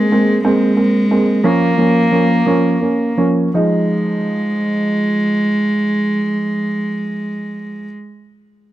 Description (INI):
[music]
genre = pop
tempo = 54-62 BPM (dotted quarters)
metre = 6/8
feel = straight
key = F minor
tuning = A4 = 441 Hz
[part]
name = warm cello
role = melody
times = 0.0-7.9 s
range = Ab3 to Bb3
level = -16 LUFS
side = equal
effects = none
[part]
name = warm upright piano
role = accompaniment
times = 0.0-7.9 s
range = F3 to Eb4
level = -16 LUFS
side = right 1 dB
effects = none
[sound]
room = small room ambience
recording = dry, close 1970s-style studio recording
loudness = -13 LUFS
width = side -14 dB against mid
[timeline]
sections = 0.0-3.5 A section; 3.5-8.0 B section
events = slowing down 0.0-3.5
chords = 0.0 Abadd9; 1.4 Bbm; 3.5 Fm7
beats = 0.44 | 1.43 2.46 | 3.55 4.66 | 5.77 6.89